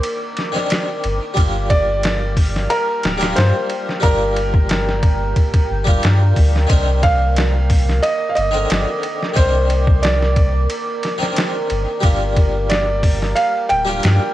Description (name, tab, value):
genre	trip hop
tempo	90 BPM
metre	4/4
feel	straight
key	C minor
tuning	A4 = 440 Hz
part	harpsichord	accompaniment	0.0-14.3 s	D3 to Bb4	-24 LUFS	left 1 dB	tremolo, cassette tape, tape echo
part	deep dark ambient pad	sustained chords	0.0-14.3 s	Bb4 to G6	-26 LUFS	right 1 dB	chorus, built-in reverb, cassette tape
part	trip hop sampler-style drum kit	drums	0.0-14.2 s	hi-hat, kick drum, ride cymbal, snare drum	-19 LUFS	equal	cassette tape
part	soft dub sub bass	bass	1.0-14.2 s	D1 to G2	-18 LUFS	equal	tube saturation
part	felt-muted upright piano	melody	1.7-14.3 s	Bb4 to G5	-20 LUFS	right 1 dB	tape echo
room	digital ambience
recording	home recording on cassette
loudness	-14 LUFS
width	side -14 dB against mid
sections	0.0-14.3 A section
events	none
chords	0.0 Cm9; 1.4 Gm7; 6.7 Cm9; 12.0 Gm7